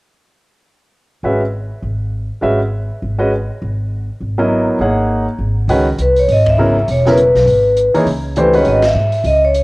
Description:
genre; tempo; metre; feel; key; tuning
modal jazz; 202 BPM; 4/4; swing 60% on 8ths; C# dorian; A4 = 440 Hz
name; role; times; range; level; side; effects
clear baby grand piano; accompaniment; 1.2-8.8 s; C#3 to F#5; -16 LUFS; equal; cassette tape
upright bass; bass; 1.2-9.6 s; E1 to G#2; -18 LUFS; equal; none
open jazz drum kit; drums; 5.7-9.6 s; hi-hat, kick drum, ride cymbal, snare drum; -28 LUFS; equal; none
vibraphone with medium mallets; melody; 6.0-9.6 s; B4 to E5; -12 LUFS; equal; none
room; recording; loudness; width
moderate spring reverb, RT60 2.1 s; home recording on cassette; -12 LUFS; side -22 dB against mid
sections
0.9-5.7 A section; 5.7-9.6 B section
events
band accent 6.4, 8.8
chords
0.9 C#m9

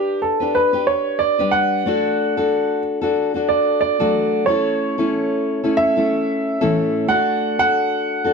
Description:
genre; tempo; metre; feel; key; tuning
pop; 92 BPM; 4/4; swing 55% on 16ths; D major; A4 = 440 Hz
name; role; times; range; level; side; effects
clear upright piano; melody; 0.0-8.3 s; G4 to F#5; -19 LUFS; right 3 dB; none
fingerpicked steel-string acoustic guitar; accompaniment; 0.0-8.3 s; A2 to B4; -19 LUFS; left 2 dB; none
room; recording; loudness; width
moderate small room ambience, RT60 0.5 s; none; -16 LUFS; side -5 dB against mid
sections
0.0-8.3 A section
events
none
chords
0.0 G; 1.9 D; 4.5 A; 7.1 D

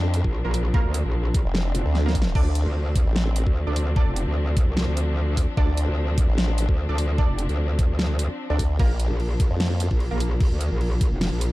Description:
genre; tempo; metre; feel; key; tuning
heavy wobble dubstep; 149 BPM; 4/4; swing 54% on 16ths, half-time; D minor; A4 = 442 Hz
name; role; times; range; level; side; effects
clear studio string section; sustained chords; 0.0-11.5 s; F3 to D4; -33 LUFS; left 2 dB; sidechain pumping, low-pass filter
orchestra-hit-like synth stab; stabs; 0.0-10.2 s; Bb3 to D5; -33 LUFS; right 4 dB; built-in reverb, digital delay
formant-sweep wobble bass; bass; 0.0-9.9 s; F1 to F2; -22 LUFS; equal; chorus, overdrive
dubstep drum kit; drums; 0.1-11.5 s; crash cymbal, hi-hat, snare drum; -29 LUFS; equal; none
metallic wobble bass; bass; 0.2-11.5 s; F1 to D2; -23 LUFS; equal; chorus, overdrive
electronic kick drum; drums; 0.2-11.1 s; none; -21 LUFS; equal; none
swell; sound effects; 1.7-2.4 s; none; -36 LUFS; right 2 dB; none
room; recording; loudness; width
little or no reverb; dark, warm production; -20 LUFS; side -18 dB against mid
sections
0.0-11.5 A section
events
swell 1.7-2.4; drum fill 1.9-2.4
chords
0.0 Bb; 2.4 Dm7; 8.8 Bb

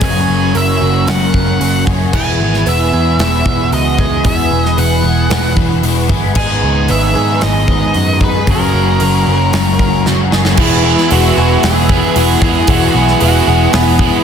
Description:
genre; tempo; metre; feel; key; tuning
rock, shoegaze and dream pop; 114 BPM; 4/4; straight; E lydian; A4 = 440 Hz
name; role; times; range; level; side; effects
octave-fuzz lead guitar; melody; 0.0-14.2 s; B3 to G#5; -18 LUFS; left 1 dB; distortion, tape echo
hollow soft pad; sustained chords; 0.0-14.2 s; A#4 to E6; -25 LUFS; left 2 dB; ensemble chorus
picked twelve-string acoustic guitar; arpeggios; 0.0-14.2 s; F#4 to B4; -22 LUFS; right 11 dB; analog chorus, tape echo
crunchy overdriven guitar; riff; 0.0-14.2 s; F#2 to E4; -18 LUFS; left 13 dB; ensemble chorus
overdriven electric guitar; riff; 0.0-14.2 s; E2 to G#4; -17 LUFS; right 12 dB; reverse reverb
vintage muted picked electric bass; bass; 0.0-14.1 s; E1 to G#2; -15 LUFS; equal; none
gated 80s drum kit; drums; 0.0-14.1 s; crash cymbal, hi-hat, kick drum, snare drum; -17 LUFS; equal; none
room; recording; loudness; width
studio reverb; dense, heavily limited modern master; -10 LUFS; side -7 dB against mid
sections
0.0-10.6 A section; 10.6-14.2 B section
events
drum fill 10.1-10.6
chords
0.0 F#add9; 2.1 Eadd9; 6.4 G#m; 8.5 F#add9; 10.6 Eadd9

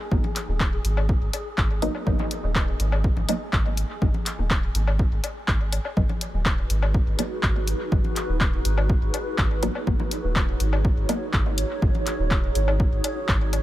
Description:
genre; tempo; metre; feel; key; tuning
dub techno; 123 BPM; 4/4; straight; G# minor; A4 = 440 Hz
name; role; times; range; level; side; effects
wind-like tuned noise texture; texture; 0.0-6.0 s; G#4; -39 LUFS; left 2 dB; built-in reverb, sidechain pumping
filtered dub chord stab; stabs; 0.1-11.2 s; F#3 to D#4; -32 LUFS; equal; chorus, phaser, sidechain pumping, dub echo
soft dub sub bass; bass; 0.1-13.6 s; D#1 to G#1; -25 LUFS; equal; sidechain pumping
electronic kick drum; drums; 0.1-13.4 s; none; -24 LUFS; equal; none
congas and woodblock; percussion; 0.2-13.6 s; none; -34 LUFS; left 5 dB; overdrive, sidechain pumping on perc, dub echo
punchy analog drum machine; drums; 0.4-13.6 s; handclaps, hi-hat; -30 LUFS; left 1 dB; dub echo
granular cloud pad; sustained chords; 6.4-13.6 s; D#4 to C#5; -30 LUFS; right 1 dB; built-in reverb, sidechain pumping
room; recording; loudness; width
little or no reverb; none; -21 LUFS; side -15 dB against mid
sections
0.0-6.0 A section; 6.0-13.6 A section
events
filter sweep on synth stab 6.0-13.6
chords
0.0 G#m7

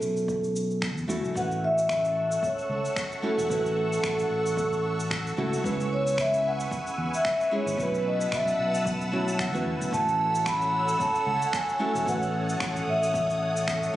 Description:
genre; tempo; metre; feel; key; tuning
sunset chillout; 112 BPM; 4/4; swing 55% on 16ths; A lydian; A4 = 438 Hz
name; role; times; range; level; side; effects
vibraphone with soft mallets; melody; 0.0-13.9 s; A4 to B5; -27 LUFS; equal; tape echo
nylon-string guitar; accompaniment; 0.0-14.0 s; G#3 to C#5; -34 LUFS; equal; auto-pan, tape echo
fingered electric bass; bass; 0.0-13.9 s; E1 to E2; -32 LUFS; left 1 dB; none
electronic cabasa and finger snaps; drums; 0.0-13.9 s; none; -36 LUFS; equal; overdrive
electronic kick drum; drums; 0.3-13.8 s; none; -37 LUFS; equal; overdrive
lush unison pad; sustained chords; 1.4-14.0 s; A4 to E6; -33 LUFS; right 1 dB; chorus, phaser
room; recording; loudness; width
moderate concert hall reverb, RT60 1.7 s, digital ambience; recorded on a phone in the room, studio reverb, compression, nothing above 10.6 kHz; -24 LUFS; side -14 dB against mid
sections
0.0-1.4 A section; 1.4-14.0 B section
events
filter sweep on nylon-string guitar 0.0-1.4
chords
0.0 B7sus4; 1.4 A6; 5.6 C#m7; 7.8 B7sus4; 9.9 A6

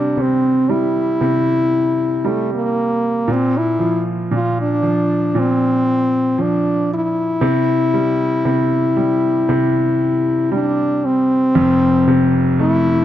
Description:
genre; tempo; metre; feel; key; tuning
pop; 58 BPM; 4/4; straight; unclear; A4 = 439 Hz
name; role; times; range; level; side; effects
clear French horn; melody; 0.0-13.0 s; A3 to F4; -16 LUFS; left 1 dB; none
clear concert grand piano; accompaniment; 0.0-13.0 s; F1 to A3; -18 LUFS; right 1 dB; none
room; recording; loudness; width
light reverb; none; -14 LUFS; side -12 dB against mid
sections
0.0-11.6 A section; 11.6-13.0 B section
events
none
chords
0.0 C; 3.3 Bbsus2; 7.4 C; 11.6 F

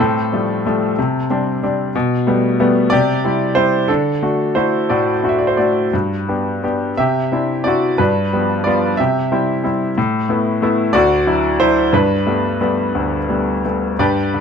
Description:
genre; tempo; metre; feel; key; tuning
classical, lyrical solo piano; 57-62 BPM (dotted quarters); 6/8; rubato; G major; A4 = 440 Hz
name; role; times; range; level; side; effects
bright grand piano; solo; 0.0-14.4 s; D2 to E5; -14 LUFS; left 1 dB; none
room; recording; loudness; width
moderate studio reverb, RT60 0.6 s; dark, warm production; -14 LUFS; side -6 dB against mid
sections
0.0-14.0 A section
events
none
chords
0.0 Fadd9/A; 1.0 Csus2; 1.9 Gadd9/B; 2.9 C; 3.9 D; 5.9 G; 7.0 Cadd9; 8.0 G7; 9.0 C; 10.0 Asus2; 10.9 Dadd9; 11.9 Gadd9

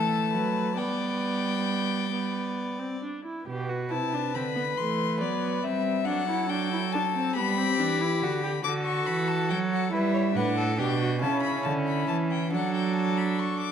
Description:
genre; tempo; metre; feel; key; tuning
classical, baroque-style fugue for string quartet; 46 BPM (dotted quarters); 6/8; straight; G major; A4 = 439 Hz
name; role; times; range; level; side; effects
rich violin; melody; 0.0-13.7 s; D5 to D6; -31 LUFS; left 9 dB; none
rich violin; second line; 0.0-13.7 s; E4 to D5; -34 LUFS; left 3 dB; none
warm viola; accompaniment; 0.0-13.7 s; A3 to G4; -30 LUFS; right 1 dB; none
dark cello; bass; 0.0-13.7 s; A2 to G3; -29 LUFS; right 4 dB; none
room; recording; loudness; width
wet recital hall reverb, RT60 1.7 s; dark, warm production; -25 LUFS; side -8 dB against mid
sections
0.0-3.5 A section; 3.5-13.7 B section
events
none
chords
0.0 D (rootless); 0.8 G; 3.5 G/B; 4.8 Am7/E; 6.1 D7/F#; 7.3 G; 8.6 D; 9.9 Em7; 11.2 A/C#; 12.5 D/F#

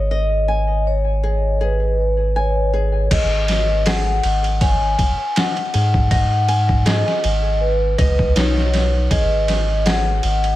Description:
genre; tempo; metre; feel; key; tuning
trip hop; 80 BPM; 4/4; swing 55% on 16ths; G# minor; A4 = 441 Hz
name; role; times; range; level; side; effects
vibraphone with soft mallets; melody; 0.0-10.6 s; B4 to G#5; -21 LUFS; left 1 dB; tape echo
flamenco guitar; arpeggios; 0.0-10.2 s; D#4 to G#5; -28 LUFS; left 1 dB; vintage 12-bit sampler grit, tape echo
soft dub sub bass; bass; 0.0-10.6 s; G#1 to G#2; -19 LUFS; equal; none
trip hop sampler-style drum kit; drums; 3.1-10.6 s; crash cymbal, hi-hat, kick drum, ride cymbal, snare drum; -20 LUFS; equal; overdrive
room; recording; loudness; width
digital ambience; echo-heavy mix; -15 LUFS; side -15 dB against mid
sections
0.0-3.1 A section; 3.1-10.6 B section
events
none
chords
0.0 G#m; 3.1 G#5

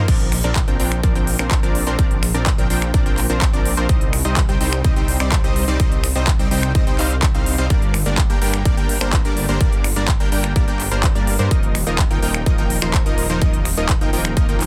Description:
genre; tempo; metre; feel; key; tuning
EDM, festival progressive house; 126 BPM; 4/4; straight; unclear; A4 = 440 Hz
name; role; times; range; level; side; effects
supersaw stab; riff; 0.0-14.7 s; F3 to G5; -25 LUFS; equal; sidechain pumping, dub echo
detuned saw bass; bass; 0.1-14.7 s; Eb1 to G2; -25 LUFS; equal; chorus, sidechain pumping
big-room dance drum kit; drums; 0.1-14.7 s; crash cymbal, finger snaps, handclaps, hi-hat; -26 LUFS; equal; none
electronic kick drum; drums; 0.1-14.5 s; none; -20 LUFS; equal; none
room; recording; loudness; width
little or no reverb; dense, heavily limited modern master; -18 LUFS; mono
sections
0.1-14.7 A section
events
drop 0.1-14.7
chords
0.1 Bbadd9; 3.9 Cm; 7.7 Gm; 11.5 Ebsus2

